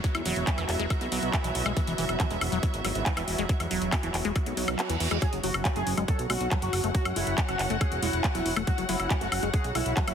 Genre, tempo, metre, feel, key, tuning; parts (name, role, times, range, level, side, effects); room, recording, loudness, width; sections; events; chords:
psychedelic trance; 139 BPM; 4/4; straight; A4 = 440 Hz
evolving wavetable pad; sustained chords; 0.0-10.1 s; F#3 to F#4; -36 LUFS; left 1 dB; chorus, built-in reverb, sidechain pumping
liquid acid bass; riff; 0.0-10.1 s; E3 to F#4; -34 LUFS; moving between left 5 dB and right 6 dB; phaser, auto-pan, sidechain pumping, digital delay
electronic kick drum; drums; 0.0-10.1 s; -27 LUFS; equal; overdrive
techno drum kit; drums; 0.0-10.1 s; handclaps, hi-hat, woodblock; -32 LUFS; left 1 dB
dark chamber string section; texture; 0.0-10.1 s; B3 to F#5; -35 LUFS; right 1 dB; sidechain pumping
fat analog bass; bass; 0.1-10.1 s; E1 to F#2; -32 LUFS; equal
reverse cymbal; sound effects; 4.5-5.2 s; -37 LUFS; right 7 dB
overdriven synth lead; melody; 5.2-10.1 s; E4 to A4; -33 LUFS; right 1 dB; distortion, phaser, cassette tape, sidechain pumping, digital delay
light reverb, digital ambience; heavily compressed radio sound, multiband compression; -25 LUFS; side -8 dB against mid
0.0-10.1 A section
reverse cymbal 4.5-5.2; kick drops out 4.8-5.2
0.0 E5; 5.2 F#5